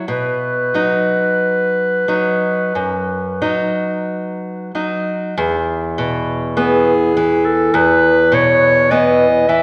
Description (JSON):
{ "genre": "romantic duo for clarinet and classical guitar", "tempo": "44-52 BPM", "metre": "4/4", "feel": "rubato", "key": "E major", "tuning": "A4 = 440 Hz", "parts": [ { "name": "nylon-string guitar", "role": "accompaniment", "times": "0.0-9.6 s", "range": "E2 to D#4", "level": "-19 LUFS", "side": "equal", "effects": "none" }, { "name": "warm clarinet", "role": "melody", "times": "0.1-9.6 s", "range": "G#4 to E5", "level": "-18 LUFS", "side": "equal", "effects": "none" } ], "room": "wet scoring stage reverb, RT60 1.7 s", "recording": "recorded in a church or concert hall", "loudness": "-16 LUFS", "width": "mono", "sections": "0.0-5.4 A section; 5.4-9.6 B section", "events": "none", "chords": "0.1 B; 5.4 E5" }